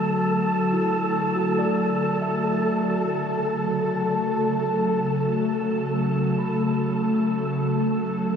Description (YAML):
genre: ambient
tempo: free time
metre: none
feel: none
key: unclear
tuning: A4 = 440 Hz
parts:
  - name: ethereal airy pad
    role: sustained chords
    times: 0.0-8.4 s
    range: C#3 to A4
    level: -23 LUFS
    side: equal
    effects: ensemble chorus, built-in reverb
  - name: wind-like tuned noise texture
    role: texture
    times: 0.0-8.4 s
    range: A4 to A5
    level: -26 LUFS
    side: right 1 dB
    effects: built-in reverb
  - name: mellow tine electric piano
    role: arpeggios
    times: 0.7-8.4 s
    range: A3 to B5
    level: -35 LUFS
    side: left 1 dB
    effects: medium stereo tremolo, ping-pong delay
room: wet huge ambient reverb, RT60 8.4 s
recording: none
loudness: -21 LUFS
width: side -7 dB against mid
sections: 0.0-8.4 A section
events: fade-out on tine electric piano 0.0-8.4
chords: 0.0 D; 3.0 F#m